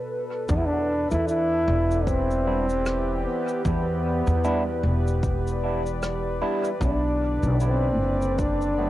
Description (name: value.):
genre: ambient dub.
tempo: 76 BPM.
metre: 4/4.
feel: swing 57% on 16ths.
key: E minor.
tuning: A4 = 441 Hz.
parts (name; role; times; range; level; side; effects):
warbly tape-like pad; sustained chords; 0.0-8.9 s; B2 to D5; -31 LUFS; equal; chorus, built-in reverb, vintage 12-bit sampler grit, cassette tape.
mellow trombone; melody; 0.5-8.9 s; B3 to E4; -26 LUFS; equal; cassette tape, dub echo.
upright bass; bass; 0.5-8.9 s; E1 to E2; -25 LUFS; equal; none.
cabasa and rim click; drums; 0.5-8.7 s; none; -39 LUFS; right 1 dB; cassette tape, dub echo.
electronic kick drum; drums; 0.5-8.6 s; none; -28 LUFS; equal; overdrive, cassette tape.
barky tine electric piano; stabs; 2.5-8.9 s; D3 to E4; -31 LUFS; right 1 dB; phaser, low-pass filter, cassette tape, dub echo.
room: light reverb.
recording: home recording on cassette.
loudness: -22 LUFS.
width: side -14 dB against mid.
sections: 0.5-8.9 A section.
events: none.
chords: 0.5 Em7; 6.8 Bm7.